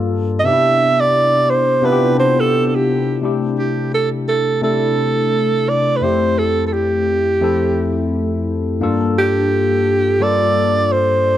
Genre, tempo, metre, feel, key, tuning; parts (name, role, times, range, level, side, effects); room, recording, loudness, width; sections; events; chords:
soul; 86 BPM; 4/4; swing 58% on 16ths; C major; A4 = 440 Hz
barky tine electric piano; accompaniment; 0.0-11.4 s; F2 to A4; -18 LUFS; left 3 dB; phaser
breathy alto saxophone; melody; 0.4-11.4 s; G4 to E5; -16 LUFS; right 2 dB
light reverb; -14 LUFS; side -12 dB against mid
0.0-3.2 A section; 3.2-11.4 B section
alto saxophone solo 0.0-3.2
0.4 Cmaj9; 3.2 C69; 6.0 Fmaj7; 8.8 Gm9